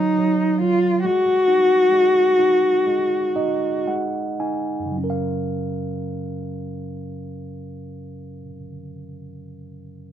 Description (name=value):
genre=acoustic folk-pop ballad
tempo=54-73 BPM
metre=4/4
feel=straight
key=F# major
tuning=A4 = 440 Hz
part: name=dark cello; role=melody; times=0.0-3.8 s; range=D#4 to F#4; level=-17 LUFS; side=left 1 dB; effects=none
part: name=overdriven tine electric piano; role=accompaniment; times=0.0-10.1 s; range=F#2 to G#5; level=-26 LUFS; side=right 2 dB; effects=none
room=light reverb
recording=minimal, uncompressed stereo recording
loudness=-18 LUFS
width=side -10 dB against mid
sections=0.0-5.0 A section; 5.0-9.4 B section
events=slowing down 0.0-5.0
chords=0.0 N.C.; 1.0 G#5; 5.0 F#maj7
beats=0.20 | 1.04 1.93 2.87 3.88 | 4.95 6.06 7.16 8.26